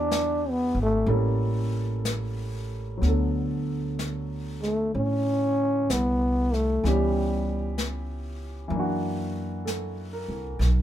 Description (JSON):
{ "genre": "jazz ballad", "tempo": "63 BPM", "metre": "4/4", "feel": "swing 66% on 8ths", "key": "D major", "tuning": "A4 = 440 Hz", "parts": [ { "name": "growling trombone", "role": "melody", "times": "0.0-7.8 s", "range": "G3 to D4", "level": "-24 LUFS", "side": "equal", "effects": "none" }, { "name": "warm grand piano", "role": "accompaniment", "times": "0.0-10.8 s", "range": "D3 to A#4", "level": "-32 LUFS", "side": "left 1 dB", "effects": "none" }, { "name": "upright bass", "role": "bass", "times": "0.0-10.8 s", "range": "G#1 to A2", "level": "-28 LUFS", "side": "right 1 dB", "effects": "none" }, { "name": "jazz brush drum kit", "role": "drums", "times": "0.1-10.8 s", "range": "brushed snare drum, hi-hat, snare drum", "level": "-36 LUFS", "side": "left 3 dB", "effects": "none" } ], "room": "light reverb", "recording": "minimal, uncompressed stereo recording", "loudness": "-24 LUFS", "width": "side -11 dB against mid", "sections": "0.0-3.0 A section; 3.0-10.8 B section", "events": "trombone solo 0.0-3.0", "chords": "0.0 Em7; 1.1 A7b9; 3.0 D6; 6.8 C#m7b5; 8.7 F#aug7" }